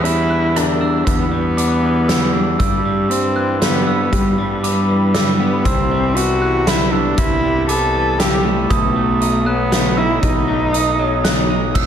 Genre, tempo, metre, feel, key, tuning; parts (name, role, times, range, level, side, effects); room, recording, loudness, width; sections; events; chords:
post-rock; 118 BPM; 3/4; straight; A4 = 440 Hz
warm cello; melody; 0.0-11.5 s; G3 to A4; -19 LUFS; equal; slapback echo, tape echo
clean electric guitar; arpeggios; 0.0-11.9 s; E2 to D#4; -23 LUFS; left 3 dB; slapback echo, tape echo
glockenspiel with soft plastic mallets; arpeggios; 0.0-11.9 s; D6 to F#6; -23 LUFS; right 4 dB; slapback echo, tape echo
fuzz fingered electric bass; bass; 0.0-11.9 s; E1 to G2; -20 LUFS; equal; overdrive
huge arena drum kit; drums; 0.1-11.9 s; crash cymbal, hi-hat, kick drum, rim click, snare drum; -20 LUFS; equal
moderate recital hall reverb, RT60 1.4 s, small room ambience; big arena sound; -14 LUFS; side -8 dB against mid
0.0-11.8 A section
0.0 Em7; 2.6 G6; 5.7 Cmaj7; 8.7 B7